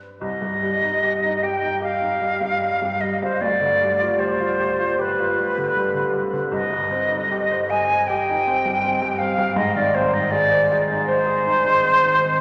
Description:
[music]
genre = classical, romantic duo for flute and grand piano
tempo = 78 BPM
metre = 4/4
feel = rubato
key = C minor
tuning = A4 = 440 Hz
[part]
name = bright baby grand piano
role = accompaniment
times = 0.0-12.4 s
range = C2 to Eb5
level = -27 LUFS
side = equal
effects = none
[part]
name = bright concert flute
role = melody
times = 0.2-12.4 s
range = B4 to Ab5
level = -22 LUFS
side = equal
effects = none
[sound]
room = wet cathedral reverb, RT60 6.1 s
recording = none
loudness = -21 LUFS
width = mono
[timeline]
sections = 0.2-12.4 A section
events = none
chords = 0.2 Cm; 3.4 G7/D; 6.5 Cm; 9.6 Ab

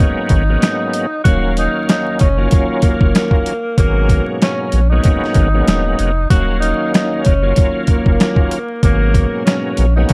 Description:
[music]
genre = hip hop, boom-bap hip-hop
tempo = 95 BPM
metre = 4/4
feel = swing 57% on 16ths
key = Eb minor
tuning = A4 = 441 Hz
[part]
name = breathy tenor saxophone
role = melody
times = 0.0-10.1 s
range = Bb3 to Gb4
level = -22 LUFS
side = equal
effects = high-pass filter, low-pass filter, tape echo
[part]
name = bright tonewheel organ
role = accompaniment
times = 0.0-10.1 s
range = Eb2 to F5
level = -22 LUFS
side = equal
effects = overdrive, chorus vibrato, slow rotary speaker, cassette tape, high-pass filter, low-pass filter
[part]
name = boom bap sampler-style drum kit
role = drums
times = 0.0-10.1 s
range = hi-hat, kick drum, snare drum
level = -16 LUFS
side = equal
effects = none
[part]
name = soft dub sub bass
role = bass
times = 0.3-10.1 s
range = Eb1 to Bb1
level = -18 LUFS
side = equal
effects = none
[sound]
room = little or no reverb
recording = echo-heavy mix, vinyl crackle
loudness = -15 LUFS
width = mono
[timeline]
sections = 0.0-10.1 A section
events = none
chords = 0.0 Abm11; 1.3 Ebm9; 3.8 Abm11; 6.3 Ebm9; 8.8 Abm11

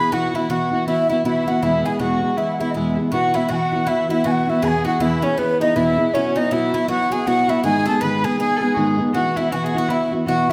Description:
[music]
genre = celtic folk, Celtic hornpipe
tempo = 160 BPM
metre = 4/4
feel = swing 60% on 8ths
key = unclear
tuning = A4 = 436 Hz
[part]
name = wooden flute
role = melody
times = 0.0-10.5 s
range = B4 to B5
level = -24 LUFS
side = equal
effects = none
[part]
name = Irish bouzouki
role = second line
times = 0.0-10.5 s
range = B3 to B4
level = -31 LUFS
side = equal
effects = none
[part]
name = warm fiddle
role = second line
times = 0.0-10.5 s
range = B3 to B4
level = -29 LUFS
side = equal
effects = none
[part]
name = fingerpicked plugged-in steel-string acoustic guitar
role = accompaniment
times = 0.0-10.5 s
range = E2 to G#4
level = -22 LUFS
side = equal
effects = none
[sound]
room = wet recital hall reverb, RT60 1.6 s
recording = none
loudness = -19 LUFS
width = mono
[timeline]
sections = 0.0-3.1 A section; 3.1-10.5 A section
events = none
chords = 0.1 Bsus4; 1.6 E; 3.1 Bsus4; 4.6 E; 6.1 Bsus4; 7.6 G#m; 9.1 Bsus4

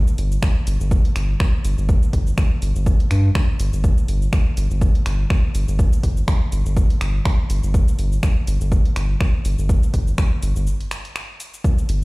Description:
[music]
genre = minimal techno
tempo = 123 BPM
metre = 4/4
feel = swing 56% on 16ths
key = unclear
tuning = A4 = 439 Hz
[part]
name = punchy analog drum machine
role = drums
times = 0.1-12.0 s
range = finger snaps, hi-hat, shaker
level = -31 LUFS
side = equal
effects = overdrive, small room ambience
[part]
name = round analog bass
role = bass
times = 0.2-12.0 s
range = G1 to G2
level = -20 LUFS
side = equal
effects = tube saturation, sidechain pumping
[part]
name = electronic kick drum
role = drums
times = 0.4-11.8 s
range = none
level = -17 LUFS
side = equal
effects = overdrive, small room ambience
[sound]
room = little or no reverb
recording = played on a big sound system in a bare room, large studio reverb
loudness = -17 LUFS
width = side -23 dB against mid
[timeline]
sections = 0.0-12.0 A section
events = break 10.7-11.6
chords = none

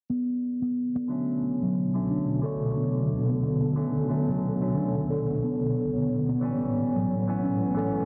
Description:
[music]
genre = organic downtempo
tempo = 90 BPM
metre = 4/4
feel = swing 56% on 16ths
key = B minor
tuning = A4 = 440 Hz
[part]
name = granular cloud pad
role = sustained chords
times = 1.4-8.1 s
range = A2 to G5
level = -31 LUFS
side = equal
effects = built-in reverb
[part]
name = steel tongue drum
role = arpeggios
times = 0.1-7.9 s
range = F#3 to A4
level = -30 LUFS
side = equal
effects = low-pass filter, delay
[part]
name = cabasa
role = drums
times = 0.1-8.1 s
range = none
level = -76 LUFS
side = equal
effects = none
[part]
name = semi-hollow electric guitar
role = accompaniment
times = 1.1-8.1 s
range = D3 to C#5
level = -35 LUFS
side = equal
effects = spring reverb, delay
[sound]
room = wet lush hall reverb, RT60 2.5 s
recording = dense, heavily limited modern master, low-pass filter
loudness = -27 LUFS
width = mono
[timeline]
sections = 0.1-8.1 A section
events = filter sweep 0.1-8.1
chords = 0.1 Bm7; 5.4 A7

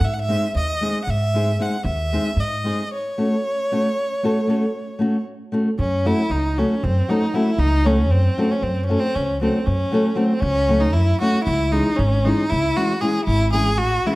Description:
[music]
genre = balkan folk, Balkan wedding band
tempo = 232 BPM (eighths)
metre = 11/8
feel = straight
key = F# dorian sharp4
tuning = A4 = 440 Hz
[part]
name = clear violin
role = melody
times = 0.0-14.2 s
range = B#3 to F#5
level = -22 LUFS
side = equal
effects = none
[part]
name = upright bass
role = bass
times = 0.0-14.0 s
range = G#1 to G#2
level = -21 LUFS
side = equal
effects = none
[part]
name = nylon-string guitar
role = accompaniment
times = 0.3-14.2 s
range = E3 to A4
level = -22 LUFS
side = left 1 dB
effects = none
[sound]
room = moderate recital hall reverb, RT60 1.3 s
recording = dark, warm production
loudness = -18 LUFS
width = side -20 dB against mid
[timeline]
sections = 0.0-5.8 A section; 5.8-14.2 B section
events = none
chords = 0.0 G#; 2.9 F#m; 11.5 C#m

